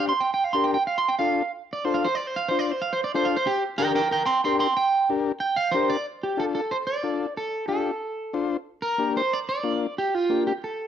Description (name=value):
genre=latin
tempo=185 BPM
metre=4/4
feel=straight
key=D minor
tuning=A4 = 440 Hz
part: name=electric guitar at the edge of break-up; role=melody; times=0.0-10.9 s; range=F4 to C6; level=-24 LUFS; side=right 3 dB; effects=spring reverb, slapback echo
part: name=combo organ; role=accompaniment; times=0.0-10.5 s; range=Bb3 to C5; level=-26 LUFS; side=left 6 dB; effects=none
room=moderate studio reverb, RT60 0.6 s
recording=dry, close 1970s-style studio recording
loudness=-22 LUFS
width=side -9 dB against mid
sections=0.0-6.1 A section; 6.1-10.9 B section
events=clean electric guitar solo 0.0-6.1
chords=0.0 Gm; 0.9 Dm; 3.5 Gm; 6.1 Dm; 8.7 Gm7